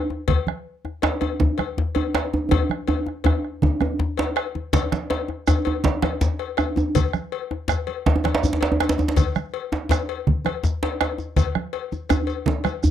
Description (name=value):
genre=west african traditional, West African drum ensemble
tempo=108 BPM (dotted quarters)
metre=12/8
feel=straight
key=none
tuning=none
part: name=djembe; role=percussion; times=0.1-12.9 s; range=none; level=-26 LUFS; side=left 3 dB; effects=none
part: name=bombo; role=percussion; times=0.3-12.9 s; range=none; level=-24 LUFS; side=equal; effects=none
part: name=congas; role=percussion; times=0.3-12.9 s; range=none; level=-26 LUFS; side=right 4 dB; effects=none
part: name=cowbell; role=percussion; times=0.3-12.8 s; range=none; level=-29 LUFS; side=left 13 dB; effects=none
part: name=djembe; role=percussion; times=1.0-12.9 s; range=none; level=-22 LUFS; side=right 2 dB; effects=none
part: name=shekere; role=percussion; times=4.7-12.9 s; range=none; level=-30 LUFS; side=right 1 dB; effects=none
room=light reverb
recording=dry, close 1970s-style studio recording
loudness=-20 LUFS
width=side -10 dB against mid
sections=0.0-4.7 A section; 4.7-12.9 B section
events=drum fill 2.5-4.7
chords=none